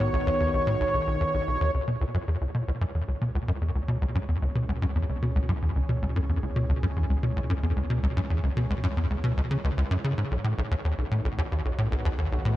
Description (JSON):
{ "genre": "ambient, sequencer-driven space music", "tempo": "112 BPM", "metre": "4/4", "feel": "straight", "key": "C# minor", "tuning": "A4 = 441 Hz", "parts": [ { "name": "lush unison pad", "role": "sustained chords", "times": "0.0-12.6 s", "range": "D#3 to C#5", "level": "-32 LUFS", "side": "equal", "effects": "chorus" }, { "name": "tight sequencer bass", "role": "riff", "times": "0.0-12.5 s", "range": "B1 to C#3", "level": "-25 LUFS", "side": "equal", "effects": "ensemble chorus, tape echo" }, { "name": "round analog bass", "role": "bass", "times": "0.0-12.6 s", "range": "B1 to C#2", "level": "-34 LUFS", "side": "equal", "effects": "none" } ], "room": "moderate plate reverb, RT60 3.4 s", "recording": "dreamy mix soaked in reverb", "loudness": "-24 LUFS", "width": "side -15 dB against mid", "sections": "0.0-1.7 A section; 1.7-12.6 B section", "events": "fade-in on analog synth pad 1.7-12.6", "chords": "0.0 Badd9; 1.7 C#m; 10.3 Badd9", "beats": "0.13 0.67 1.20 | 1.74 2.27 2.81 3.35 | 3.88 4.42 4.95 5.49 | 6.03 6.56 7.10 7.63 | 8.17 8.70 9.24 9.78 | 10.31 10.85 11.38 11.92 | 12.45" }